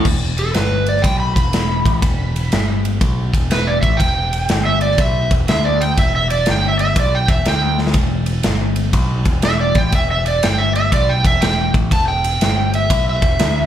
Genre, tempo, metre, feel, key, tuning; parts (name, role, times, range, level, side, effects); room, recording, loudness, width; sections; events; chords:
blues rock power trio and southern rock; 122 BPM; 4/4; swing 66% on 8ths; E minor; A4 = 440 Hz
growling picked electric bass; bass; 0.0-13.7 s; E1 to D2; -19 LUFS; equal; overdrive
big rock drum kit; drums; 0.0-13.5 s; crash cymbal, kick drum, ride cymbal, snare drum; -18 LUFS; equal
overdriven slide guitar; melody; 0.4-13.7 s; A4 to B5; -19 LUFS; right 2 dB; slapback echo, plate reverb
light reverb; live gig heard through the venue's PA, club reverb; -14 LUFS; side -10 dB against mid
0.1-13.7 A section
electric slide guitar solo 0.1-13.7; drum fill 7.7
0.1 Em